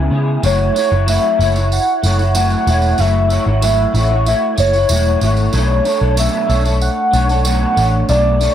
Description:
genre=indie pop, bedroom pop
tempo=94 BPM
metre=4/4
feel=straight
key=F# minor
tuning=A4 = 440 Hz
part: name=electric guitar through a small old amp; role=accompaniment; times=0.0-8.5 s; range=B2 to C#5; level=-19 LUFS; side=left 1 dB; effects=ensemble chorus, vibrato effect
part: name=vintage muted picked electric bass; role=bass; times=0.0-8.5 s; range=E1 to C#3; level=-15 LUFS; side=equal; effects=none
part: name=tambourine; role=percussion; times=0.4-8.5 s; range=none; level=-26 LUFS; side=right 4 dB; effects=none
part: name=warm velvety synth lead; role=melody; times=0.5-8.5 s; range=C#5 to F#5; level=-17 LUFS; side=equal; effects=wide subtle chorus
room=little or no reverb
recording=none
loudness=-12 LUFS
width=side -10 dB against mid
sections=0.4-8.5 A section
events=none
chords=0.4 F#m7; 5.5 Bm9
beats=| 0.43 1.07 1.71 2.35 | 2.98 3.62 4.26 4.90 | 5.53 6.17 6.81 7.45 | 8.08

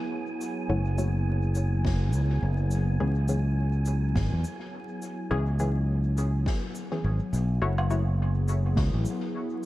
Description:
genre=ambient dub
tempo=104 BPM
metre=4/4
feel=swing 58% on 16ths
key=unclear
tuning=A4 = 440 Hz
part: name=warbly tape-like pad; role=sustained chords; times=0.0-9.7 s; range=F#3 to G#4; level=-34 LUFS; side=equal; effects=chorus, built-in reverb
part: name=wind-like tuned noise texture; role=texture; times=0.0-7.6 s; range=G#5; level=-43 LUFS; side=right 2 dB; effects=built-in reverb
part: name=cabasa, snare drum and woodblock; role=drums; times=0.4-9.2 s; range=none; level=-39 LUFS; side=left 1 dB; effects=dub echo
part: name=filtered dub chord stab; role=stabs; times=0.7-8.0 s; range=E3 to C#5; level=-35 LUFS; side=left 3 dB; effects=chorus, dub echo
part: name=fingered electric bass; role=bass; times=0.7-9.0 s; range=F#1 to E2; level=-25 LUFS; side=equal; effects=tube saturation
part: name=electronic kick drum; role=drums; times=1.8-8.9 s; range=none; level=-29 LUFS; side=equal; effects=none
room=light reverb, studio ambience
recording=dark, warm production, vinyl crackle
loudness=-24 LUFS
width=side -16 dB against mid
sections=0.0-7.6 A section; 7.6-9.7 B section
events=none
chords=0.0 F#m7; 3.0 C#m7; 7.6 F#m7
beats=0.12 | 0.69 1.27 1.85 2.42 | 3.00 3.58 4.16 4.73 | 5.31 5.89 6.46 7.04 | 7.62 8.19 8.77 9.35

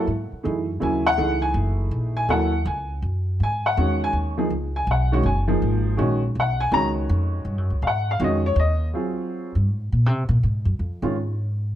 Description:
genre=modal jazz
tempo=163 BPM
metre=3/4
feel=swing 64% on 8ths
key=unclear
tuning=A4 = 440 Hz
part: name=warm upright piano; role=accompaniment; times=0.0-11.1 s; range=C#3 to A#5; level=-23 LUFS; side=equal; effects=none
part: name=upright bass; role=bass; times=0.0-11.8 s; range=F#1 to C3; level=-22 LUFS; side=equal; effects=none
room=light reverb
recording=close, detailed microphones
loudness=-20 LUFS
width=side -12 dB against mid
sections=0.1-8.9 A section; 8.9-11.8 A section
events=upright bass solo 8.9-11.8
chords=0.1 G#9sus4; 4.5 C#9sus4; 8.9 Bb7sus2 (rootless)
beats=| 0.07 0.44 0.81 | 1.19 1.55 1.93 | 2.29 2.67 3.04 | 3.40 3.77 4.14 | 4.51 4.88 5.25 | 5.62 5.99 6.36 | 6.73 7.10 7.47 | 7.83 8.20 8.57 | 8.94 9.31 9.68 | 10.05 10.42 10.79 | 11.15 11.53

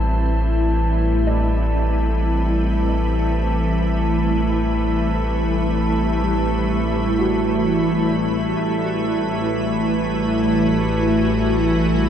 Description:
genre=ambient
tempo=free time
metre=none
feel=none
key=A dorian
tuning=A4 = 441 Hz
part: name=soft additive organ-like pad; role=sustained chords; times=0.0-12.1 s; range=A2 to B4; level=-23 LUFS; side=right 1 dB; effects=ensemble chorus, built-in reverb
part: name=felt-muted upright piano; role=arpeggios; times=0.0-12.1 s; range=G3 to D5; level=-31 LUFS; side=equal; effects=none
part: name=warm sub bass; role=bass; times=0.0-12.1 s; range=A1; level=-23 LUFS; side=equal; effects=none
part: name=organ-like drone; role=drone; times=0.0-12.1 s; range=A3 to E4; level=-22 LUFS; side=equal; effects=ensemble chorus, built-in reverb
part: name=glass harmonica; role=texture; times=0.0-12.1 s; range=A5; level=-31 LUFS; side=equal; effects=none
room=wet huge ambient reverb, RT60 8.5 s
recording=dark, warm production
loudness=-17 LUFS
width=side -9 dB against mid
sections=0.0-12.1 A section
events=fade-in on ambient pad 0.0-12.1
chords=0.0 Am7; 8.6 Emadd9/A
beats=free time

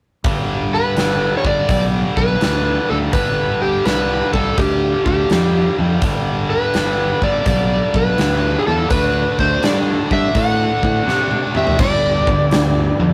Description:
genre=blues rock power trio and southern rock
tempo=83 BPM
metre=4/4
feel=swing 67% on 8ths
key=G major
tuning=A4 = 438 Hz
part: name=tight distorted guitar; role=riff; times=0.2-13.1 s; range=G2 to D4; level=-24 LUFS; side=equal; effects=distortion
part: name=overdriven fingered electric bass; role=bass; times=0.2-13.1 s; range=G1 to C3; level=-22 LUFS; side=equal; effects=none
part: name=huge arena drum kit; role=drums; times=0.2-12.7 s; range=crash cymbal, hi-hat, kick drum, snare drum, toms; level=-23 LUFS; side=equal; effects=none
part: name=overdriven slide guitar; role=melody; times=0.7-13.1 s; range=G4 to F#5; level=-21 LUFS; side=equal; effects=none
part: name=overdriven tonewheel organ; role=sustained chords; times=11.8-13.1 s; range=G3 to G4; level=-29 LUFS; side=equal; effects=slow rotary speaker, chorus vibrato
room=light reverb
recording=rough rehearsal-room recording, warm saturation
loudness=-17 LUFS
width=mono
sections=0.3-11.8 A section; 11.8-13.1 B section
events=drum fill 11.1-11.8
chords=0.3 G; 8.9 D7; 11.8 G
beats=| 0.25 0.97 1.69 2.41 | 3.13 3.86 4.58 5.30 | 6.02 6.74 7.47 8.19 | 8.91 9.63 10.36 11.08 | 11.80 12.52

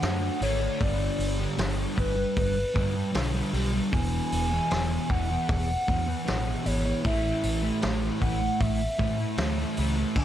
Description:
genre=rock, shoegaze and dream pop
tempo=77 BPM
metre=4/4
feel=straight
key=A major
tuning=A4 = 440 Hz
part: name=hollow clarinet-like synth lead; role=melody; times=0.0-10.2 s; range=B4 to G#5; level=-32 LUFS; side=equal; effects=chorus, tape echo
part: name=fuzz guitar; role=riff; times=0.0-10.2 s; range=E2 to D4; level=-29 LUFS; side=right 1 dB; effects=distortion, analog chorus
part: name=vintage muted fingered electric bass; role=bass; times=0.0-10.2 s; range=E1 to A2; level=-30 LUFS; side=equal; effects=none
part: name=loose indie drum kit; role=drums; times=0.0-10.2 s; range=crash cymbal, hi-hat, kick drum, snare drum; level=-31 LUFS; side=equal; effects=none
room=little or no reverb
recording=dark, warm production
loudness=-24 LUFS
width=side -11 dB against mid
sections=0.0-10.2 A section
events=none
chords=0.0 D; 0.8 G; 3.9 E; 7.0 A5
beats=0.03 | 0.81 1.59 2.37 3.15 | 3.93 4.71 5.49 6.27 | 7.05 7.83 8.60 9.38 | 10.16

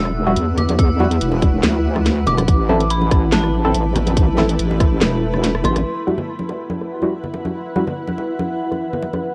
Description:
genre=deep dubstep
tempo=142 BPM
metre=4/4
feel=half-time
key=unclear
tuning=A4 = 440 Hz
part: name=dark detuned synth bell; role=melody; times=0.0-5.8 s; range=A5 to E6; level=-29 LUFS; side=equal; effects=chorus, tremolo, phaser, cassette tape, dub echo
part: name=granular cloud pad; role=sustained chords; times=0.1-9.3 s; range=A3 to F#5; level=-27 LUFS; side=equal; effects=built-in reverb
part: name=deep soft wobble bass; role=bass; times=0.0-5.8 s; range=E1 to E2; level=-21 LUFS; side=equal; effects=chorus
part: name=garage drum kit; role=drums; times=0.1-9.3 s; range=hi-hat, rim click, snare drum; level=-24 LUFS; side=equal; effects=low-pass filter on hats, cassette tape, low-pass filter on snare, low-pass filter on room
part: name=filtered dub chord stab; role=stabs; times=0.3-7.8 s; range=G3 to A4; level=-25 LUFS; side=equal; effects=chorus, dub echo
part: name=congas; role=percussion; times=0.3-9.2 s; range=none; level=-27 LUFS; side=equal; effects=none
part: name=electronic kick drum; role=drums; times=0.8-4.9 s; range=none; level=-17 LUFS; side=equal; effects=cassette tape
room=light reverb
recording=home recording on cassette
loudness=-18 LUFS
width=mono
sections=0.0-5.9 A section; 5.9-9.3 B section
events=drop 0.0-5.9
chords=0.0 Emadd9; 2.5 Am; 5.9 Emadd9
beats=0.36 | 0.79 1.21 1.63 2.06 | 2.48 2.90 3.32 3.75 | 4.17 4.59 5.01 5.44 | 5.86 6.28 6.70 7.13 | 7.55 7.97 8.39 8.82 | 9.24

